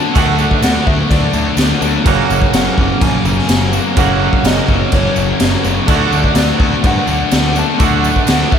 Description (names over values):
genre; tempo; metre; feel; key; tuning
rock, shoegaze and dream pop; 125 BPM; 4/4; straight; D major; A4 = 440 Hz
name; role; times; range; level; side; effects
soft struck synth lead; melody; 0.0-8.6 s; C#5 to A5; -22 LUFS; left 2 dB; chorus, slapback echo
semi-hollow electric guitar; arpeggios; 0.0-8.6 s; A3 to F#4; -27 LUFS; left 11 dB; none
thick fuzz guitar; riff; 0.0-8.6 s; F#2 to D4; -20 LUFS; left 11 dB; distortion, lush chorus
tight distorted guitar; riff; 0.0-8.6 s; F#2 to D4; -21 LUFS; equal; distortion
twangy electric guitar; riff; 0.0-8.6 s; F#2 to F#4; -19 LUFS; right 12 dB; reverse reverb
fuzz picked electric bass; bass; 0.2-8.6 s; F#1 to G2; -18 LUFS; equal; overdrive
raw garage drum kit; drums; 0.2-8.6 s; crash cymbal, kick drum, snare drum; -15 LUFS; equal; none
tambourine; percussion; 0.2-8.4 s; none; -31 LUFS; right 19 dB; none
room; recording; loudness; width
studio reverb; none; -11 LUFS; side -8 dB against mid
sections
0.0-8.6 A section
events
none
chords
0.0 D; 2.1 F#; 5.9 D